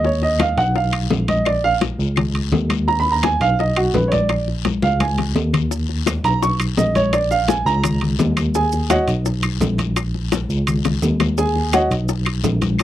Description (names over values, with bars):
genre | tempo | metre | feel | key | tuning
latin, Cuban son and guajira | 170 BPM | 4/4 | straight | unclear | A4 = 440 Hz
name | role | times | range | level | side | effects
warm baby grand piano | arpeggios | 0.0-9.1, 11.4-11.9 s | F#4 to Db6 | -18 LUFS | right 3 dB | none
overdriven tine electric piano | bass | 0.0-12.8 s | A#1 to Eb2 | -20 LUFS | equal | fast tremolo
bongos | percussion | 0.0-12.8 s | none | -24 LUFS | left 13 dB | none
guiro | percussion | 0.0-12.8 s | none | -34 LUFS | left 23 dB | none
congas | percussion | 0.1-12.8 s | none | -24 LUFS | left 3 dB | none
claves | percussion | 0.4-12.8 s | none | -30 LUFS | left 23 dB | none
timbales | percussion | 0.4-12.8 s | none | -24 LUFS | right 3 dB | none
maracas | percussion | 5.7-12.8 s | none | -33 LUFS | right 9 dB | none
room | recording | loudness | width
little or no reverb | dry, close 1970s-style studio recording | -16 LUFS | side -12 dB against mid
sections
0.0-12.8 A section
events
grand piano solo 0.0-12.8; drum fill 4.7-5.7, 10.3-11.4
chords
0.0 Badd9; 0.8 Bmaj7#11; 1.5 Bbm; 2.2 Dbsus2; 2.9 Bmaj7#11; 3.6 Bmaj7; 4.3 Bbm; 5.0 Dbsus2; 5.7 Bmaj7; 6.4 Bbmadd11; 7.1 Bb7#9; 7.8 Bbmadd11/Db; 8.5 Ebm7; 9.3 N.C.; 10.0 Bbm; 10.7 Dbsus2; 11.4 Ebm7; 12.1 N.C.